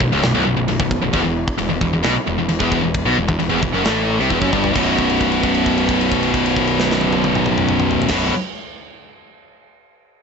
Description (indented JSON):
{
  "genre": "heavy metal",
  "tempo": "132 BPM",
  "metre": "4/4",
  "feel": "straight",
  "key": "unclear",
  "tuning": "A4 = 440 Hz",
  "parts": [
    { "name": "high-gain distorted guitar", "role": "riff", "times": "0.0-8.3 s", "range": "B1 to C3", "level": "-17 LUFS", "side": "equal", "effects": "distortion" },
    { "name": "fuzz picked electric bass", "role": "bass", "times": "0.0-8.3 s", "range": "B0 to C2", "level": "-23 LUFS", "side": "right 1 dB", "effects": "overdrive" },
    { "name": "tight metal drum kit", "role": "drums", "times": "0.0-8.2 s", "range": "china cymbal, crash cymbal, kick drum, snare drum, toms", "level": "-23 LUFS", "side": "equal", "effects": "none" }
  ],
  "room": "moderate studio ambience, RT60 0.5 s",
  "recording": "nothing above 7.9 kHz",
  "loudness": "-15 LUFS",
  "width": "side -6 dB against mid",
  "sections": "0.0-4.8 A section; 4.8-8.4 B section",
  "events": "drum fill 4.3-4.8; held note 4.8-8.1",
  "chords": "0.0 B5; 1.1 E5; 4.8 B5",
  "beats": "0.23 0.68 | 1.14 1.59 2.04 2.49 | 2.95 3.40 3.85 4.30 | 4.76 5.21 5.66 6.12 | 6.57 7.02 7.47 7.93"
}